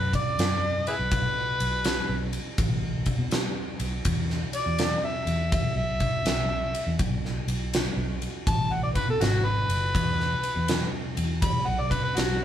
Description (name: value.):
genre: blues rock power trio and southern rock.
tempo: 82 BPM.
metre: 4/4.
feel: swing 66% on 8ths.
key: unclear.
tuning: A4 = 441 Hz.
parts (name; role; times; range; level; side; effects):
overdriven harmonica; melody; 0.0-12.4 s; E4 to B5; -28 LUFS; equal; none.
vintage muted fingered electric bass; bass; 0.0-12.4 s; F#1 to B2; -29 LUFS; equal; none.
huge arena drum kit; drums; 0.1-12.4 s; kick drum, ride cymbal, snare drum; -27 LUFS; equal; none.
room: light reverb.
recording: band playing live in one room.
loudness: -24 LUFS.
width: side -10 dB against mid.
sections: 0.0-12.4 A section.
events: harmonica solo 0.0-12.4.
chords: 0.0 B5; 4.0 E5; 7.0 B5; 9.9 E5.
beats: 0.38 | 1.11 1.85 2.58 3.31 | 4.05 4.78 5.52 6.25 | 6.99 7.73 8.46 9.20 | 9.94 10.68 11.42 12.16.